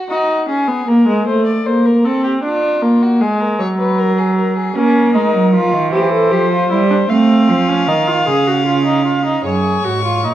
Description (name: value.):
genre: classical, baroque-style fugue for string quartet.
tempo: 51 BPM (dotted quarters).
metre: 6/8.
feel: straight.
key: Eb minor.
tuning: A4 = 445 Hz.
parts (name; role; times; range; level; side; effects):
dark violin; second line; 0.0-10.3 s; F4 to F5; -20 LUFS; left 5 dB; none.
rich viola; accompaniment; 0.1-10.3 s; Gb3 to A4; -15 LUFS; equal; none.
rich cello; bass; 4.8-10.3 s; Gb2 to Bb3; -14 LUFS; right 4 dB; none.
warm violin; melody; 9.5-10.3 s; Db6; -22 LUFS; left 5 dB; none.
room: moderate recital hall reverb, RT60 1.7 s.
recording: dark, warm production.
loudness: -12 LUFS.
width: side -12 dB against mid.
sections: 0.1-9.5 A section.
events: none.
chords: 0.1 Ebm; 1.3 Bbmaj7sus2/A; 2.4 Bb; 3.6 Gbadd9; 4.8 Bbm; 5.9 C/E; 7.1 F; 8.3 Dbadd9; 9.5 Gb5.